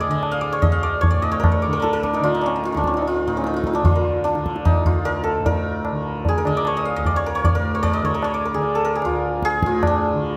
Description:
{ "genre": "indian classical, Hindustani", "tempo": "150 BPM", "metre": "4/4", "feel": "straight", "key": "D raga todi", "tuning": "A4 = 439 Hz", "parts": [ { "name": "santur", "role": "melody", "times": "0.0-10.4 s", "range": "C#4 to F5", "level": "-24 LUFS", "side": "equal", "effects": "none" }, { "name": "tanpura", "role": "drone", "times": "0.0-10.4 s", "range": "D2 to D3", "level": "-29 LUFS", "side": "equal", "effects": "none" }, { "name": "tabla", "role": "percussion", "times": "0.2-10.0 s", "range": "none", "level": "-24 LUFS", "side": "equal", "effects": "none" } ], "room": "moderate recital hall reverb, RT60 1.5 s", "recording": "close, detailed microphones", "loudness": "-20 LUFS", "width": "mono", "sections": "0.0-10.4 A section", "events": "none", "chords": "none" }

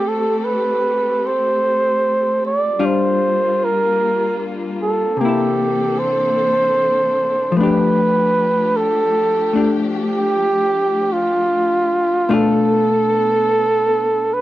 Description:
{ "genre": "jazz ballad", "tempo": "50 BPM", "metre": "4/4", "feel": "swing 68% on 8ths", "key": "unclear", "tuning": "A4 = 440 Hz", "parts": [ { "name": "trumpet with bucket mute", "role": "melody", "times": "0.0-14.4 s", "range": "F4 to D5", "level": "-16 LUFS", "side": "right 2 dB", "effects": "none" }, { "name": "vintage hollow-body jazz guitar", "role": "accompaniment", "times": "0.0-14.4 s", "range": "B2 to A4", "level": "-20 LUFS", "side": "left 4 dB", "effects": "none" }, { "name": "warm studio string section", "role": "sustained chords", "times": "0.0-14.4 s", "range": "E3 to A4", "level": "-25 LUFS", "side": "left 2 dB", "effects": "none" } ], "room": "small room ambience", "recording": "dry, close 1970s-style studio recording", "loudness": "-15 LUFS", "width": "side -14 dB against mid", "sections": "0.0-14.4 A section", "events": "none", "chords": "0.0 Am7; 2.8 Gm7; 5.2 C13; 7.5 F69; 12.3 Bm7b5" }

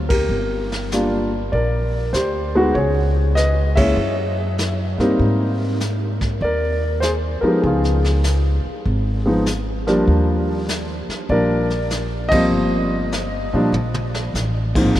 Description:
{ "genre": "jazz piano trio", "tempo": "98 BPM", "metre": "4/4", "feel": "swing 67% on 8ths", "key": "Eb major", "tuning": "A4 = 441 Hz", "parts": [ { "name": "upright bass", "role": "bass", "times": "0.0-15.0 s", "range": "G1 to Bb2", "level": "-21 LUFS", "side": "equal", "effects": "none" }, { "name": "warm grand piano", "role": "melody", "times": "0.1-15.0 s", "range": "Ab2 to Fb5", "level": "-19 LUFS", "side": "equal", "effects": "none" }, { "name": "vintage brush drum kit", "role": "drums", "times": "0.1-15.0 s", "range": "brushed snare drum, crash cymbal, hi-hat, kick drum, ride cymbal, snare drum, toms", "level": "-26 LUFS", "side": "equal", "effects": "none" } ], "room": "moderate huge ambient reverb, RT60 7.7 s", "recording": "in a vast, echoing space", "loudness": "-17 LUFS", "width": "side -13 dB against mid", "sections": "0.0-15.0 A section", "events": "band accent 0.0-0.3, 3.7-4.0, 12.2-12.5; drum fill 13.7-14.3", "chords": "0.3 Gm; 2.7 Dbm7; 4.0 Gb7; 5.2 Abmaj9; 7.6 Db9; 10.1 Ebmaj9" }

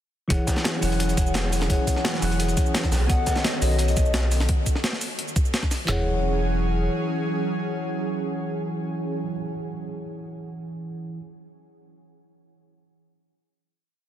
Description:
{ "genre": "liquid drum and bass", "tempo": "172 BPM", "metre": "4/4", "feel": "straight", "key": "E major", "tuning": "A4 = 440 Hz", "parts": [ { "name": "bell-like tine electric piano", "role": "accompaniment", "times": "0.3-11.2 s", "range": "E3 to F#5", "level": "-29 LUFS", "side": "left 1 dB", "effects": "phaser, ping-pong delay" }, { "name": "airy breathy pad", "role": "sustained chords", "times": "0.6-9.2 s", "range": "D#3 to A4", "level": "-31 LUFS", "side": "right 2 dB", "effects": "chorus, sidechain pumping" }, { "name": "saturated sub bass", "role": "bass", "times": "0.3-6.9 s", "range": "E1 to B1", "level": "-24 LUFS", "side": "equal", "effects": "none" }, { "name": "breakbeat sampler-style drum kit", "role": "drums", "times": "0.3-5.8 s", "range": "hi-hat, shaker, snare drum", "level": "-28 LUFS", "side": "equal", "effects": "none" }, { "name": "crunchy breakbeat drum kit", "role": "drums", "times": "0.3-4.5 s", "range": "hi-hat, snare drum", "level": "-34 LUFS", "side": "equal", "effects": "high-pass filter on hats, high-pass filter on snare, high-pass filter on room" }, { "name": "garage drum kit", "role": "drums", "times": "0.3-6.0 s", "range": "handclaps, kick drum, snare drum, toms", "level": "-23 LUFS", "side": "equal", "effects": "overdrive" }, { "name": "hollow clarinet-like synth lead", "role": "melody", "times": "3.1-4.1 s", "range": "D#5 to F#5", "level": "-33 LUFS", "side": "left 3 dB", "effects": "analog chorus, ping-pong delay" } ], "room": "light reverb", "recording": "dense, heavily limited modern master", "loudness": "-22 LUFS", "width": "side -11 dB against mid", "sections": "0.3-5.9 drop; 5.9-8.7 final chord", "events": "drop 0.3-5.9", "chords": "0.3 E69; 2.9 B9; 5.9 E69" }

